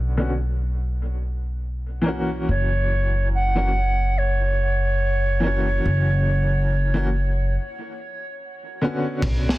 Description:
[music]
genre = trip hop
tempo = 71 BPM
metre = 4/4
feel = swing 59% on 16ths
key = unclear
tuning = A4 = 440 Hz
[part]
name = clear upright piano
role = accompaniment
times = 0.0-9.6 s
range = D3 to F#4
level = -26 LUFS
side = left 1 dB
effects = tremolo, vintage 12-bit sampler grit, tape echo
[part]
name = upright bass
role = bass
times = 0.0-9.5 s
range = F#1 to B1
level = -21 LUFS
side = equal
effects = none
[part]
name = reedy silver concert flute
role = melody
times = 2.5-7.6 s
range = C#5 to F#5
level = -26 LUFS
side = right 2 dB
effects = dub echo
[part]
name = crunchy breakbeat drum kit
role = drums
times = 9.2-9.6 s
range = kick drum, ride cymbal, snare drum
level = -22 LUFS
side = equal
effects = none
[sound]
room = studio ambience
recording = dense, heavily limited modern master, low-pass filter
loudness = -20 LUFS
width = side -17 dB against mid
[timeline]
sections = 0.0-9.2 A section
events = filter sweep 0.0-9.2; break 7.5-9.2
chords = 0.0 Bsus2; 2.5 F#7

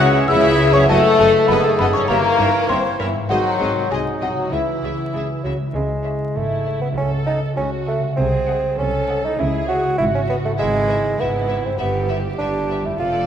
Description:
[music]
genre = cinematic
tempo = 99 BPM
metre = 2/4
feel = straight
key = C# minor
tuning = A4 = 440 Hz
[part]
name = rich studio violin section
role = melody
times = 0.0-13.3 s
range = C#5 to F#5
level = -31 LUFS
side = left 4 dB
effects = none
[part]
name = xylophone with soft rubber mallets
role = melody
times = 0.0-5.4 s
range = E5 to F#6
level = -25 LUFS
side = left 2 dB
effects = none
[part]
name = clear oboe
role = second line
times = 0.0-5.4 s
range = G#4 to E5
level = -28 LUFS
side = right 3 dB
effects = none
[part]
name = flute section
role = second line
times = 0.0-5.4 s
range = E4 to F#5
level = -26 LUFS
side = left 1 dB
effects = none
[part]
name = rich studio violin section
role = second line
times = 0.0-13.3 s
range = E4 to E5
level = -29 LUFS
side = left 1 dB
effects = none
[part]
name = warm clarinet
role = second line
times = 0.0-5.6 s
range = B#3 to A4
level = -24 LUFS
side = left 2 dB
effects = none
[part]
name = rich studio viola section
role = accompaniment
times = 0.0-13.3 s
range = C#4 to C#5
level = -29 LUFS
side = right 2 dB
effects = none
[part]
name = warm bassoon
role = accompaniment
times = 0.0-13.3 s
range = D#3 to F#4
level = -22 LUFS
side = right 2 dB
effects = none
[part]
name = warm French horn section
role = sustained chords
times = 0.0-5.4 s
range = E3 to F#4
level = -18 LUFS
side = left 3 dB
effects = none
[part]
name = concert harp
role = arpeggios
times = 0.0-13.3 s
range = F2 to E5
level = -26 LUFS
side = left 2 dB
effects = none
[part]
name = bright studio double bass section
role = bass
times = 0.0-13.3 s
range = F1 to C#2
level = -26 LUFS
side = right 2 dB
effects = none
[part]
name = rich symphonic cello section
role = bass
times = 0.0-13.3 s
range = F2 to C#3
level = -28 LUFS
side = right 2 dB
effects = none
[sound]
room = wet concert hall reverb, RT60 2.2 s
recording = minimal, uncompressed stereo recording, vinyl crackle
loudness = -16 LUFS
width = side -8 dB against mid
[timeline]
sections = 0.0-5.8 A section; 5.8-13.3 B section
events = none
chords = 0.0 C#m; 0.9 D#dim/F#; 2.1 Gdim7; 3.3 G#; 3.9 G#7/B#; 4.5 C#m; 7.0 D#m7b5/C#; 8.2 G#7/B#; 9.4 C#m; 10.6 E/G#; 11.8 Em/G

